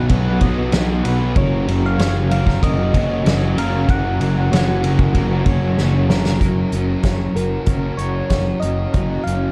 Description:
rock, shoegaze and dream pop; 95 BPM; 4/4; straight; F# major; A4 = 438 Hz
electric guitar through a small old amp; arpeggios; 0.0-9.5 s; A#4 to D#5; -34 LUFS; equal; subtle chorus, analog delay
crunchy overdriven guitar; riff; 0.0-9.5 s; F#2 to A#4; -29 LUFS; equal; reverse reverb
overdriven semi-hollow guitar; riff; 0.0-9.5 s; F#2 to B3; -29 LUFS; equal
thick fuzz guitar; riff; 0.0-9.5 s; F#2 to F#4; -26 LUFS; equal; distortion, subtle chorus
fuzz picked electric bass; bass; 0.0-9.5 s; F#1 to B1; -23 LUFS; equal; overdrive
loose indie drum kit; drums; 0.1-9.4 s; hi-hat, kick drum, ride cymbal, snare drum; -22 LUFS; equal
soft struck synth lead; melody; 1.4-9.5 s; A#4 to F#5; -29 LUFS; equal; chorus, analog delay
small room ambience; dark, warm production; -18 LUFS; mono
0.0-6.4 A section; 6.4-9.5 B section
drum fill 5.8-6.4
0.0 B; 1.4 F#
0.11 0.74 | 1.37 2.00 2.63 3.26 | 3.89 4.52 5.16 5.79 | 6.42 7.05 7.69 8.32 | 8.96

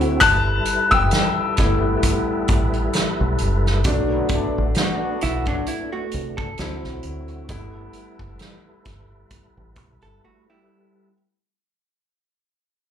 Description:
R&B, neo-soul; 66 BPM; 4/4; swing 55% on 16ths; G major; A4 = 440 Hz
clear baby grand piano; accompaniment; 0.0-11.1 s; F#3 to F#6; -21 LUFS; left 3 dB; slapback echo
tonewheel organ; sustained chords; 0.0-11.1 s; D3 to B4; -28 LUFS; equal; slow rotary speaker, overdrive, chorus vibrato
deep dub fingered electric bass; bass; 0.0-10.2 s; F#1 to D2; -23 LUFS; equal
unplugged drum kit; drums; 0.0-10.2 s; hi-hat, kick drum, snare drum; -23 LUFS; right 1 dB
bright trombone section; stabs; 4.1-6.1 s; D3 to F#4; -28 LUFS; left 3 dB; slapback echo
vintage hollow-body jazz guitar; second line; 5.2-11.1 s; F#3 to A4; -29 LUFS; right 5 dB; slapback echo
light reverb; live gig heard through the venue's PA, club reverb; -18 LUFS; side -9 dB against mid
0.0-11.1 A section
fade-out 0.0-11.1; grand piano solo 0.0-11.1; break 10.2-11.1
0.2 G69; 3.9 Bm7; 6.6 D7; 7.5 G69
| 0.22 1.12 2.03 2.94 | 3.85 4.76 5.67 6.58 | 7.49 8.40 9.31 10.22

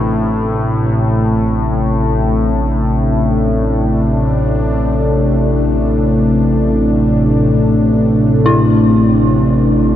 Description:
dark ambient drone; free time; A minor; A4 = 442 Hz
sweeping resonant pad; sustained chords; 0.0-10.0 s; C3 to E4; -14 LUFS; left 1 dB; wide subtle chorus
dark detuned synth bell; arpeggios; 0.0-10.0 s; D4 to E4; -22 LUFS; equal; chorus, tape echo
analog drone; drone; 0.0-10.0 s; A1 to A2; -15 LUFS; equal; chorus
quartz singing bowl; texture; 0.0-10.0 s; E4; -30 LUFS; right 2 dB
moderate huge ambient reverb, RT60 8.8 s; -11 LUFS; side -11 dB against mid
0.0-10.0 A section
0.0 Am
free time

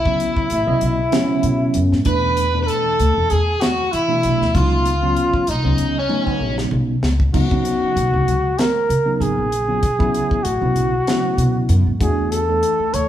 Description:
electric jazz fusion; 97 BPM; 4/4; swing 55% on 16ths; A4 = 440 Hz
trumpet with bucket mute; melody; 0.0-13.1 s; Db4 to Db5; -20 LUFS; equal
biting overdriven guitar; second line; 0.0-6.6 s; Db4 to B4; -25 LUFS; left 1 dB
upright bass; bass; 0.0-13.1 s; Ab1 to E3; -20 LUFS; equal
tine electric piano; accompaniment; 0.1-13.1 s; B2 to Eb5; -22 LUFS; right 1 dB; medium stereo tremolo, phaser
crisp fusion drum kit; drums; 0.1-13.1 s; crash cymbal, hi-hat, kick drum, snare drum, toms; -23 LUFS; equal
moderate large studio reverb, RT60 1.3 s; band playing live in one room; -16 LUFS; side -11 dB against mid
0.0-7.3 A section; 7.3-13.1 A section
drum fill 6.1-7.3
0.0 Cbsus4; 2.1 E7sus4; 4.5 Db9sus4; 9.8 Cbsus4; 12.0 E9sus4
0.51 1.13 1.75 | 2.37 2.99 3.61 4.23 | 4.85 5.47 6.09 6.72 | 7.34 7.96 8.58 9.20 | 9.82 10.45 11.07 11.69 | 12.31 12.94

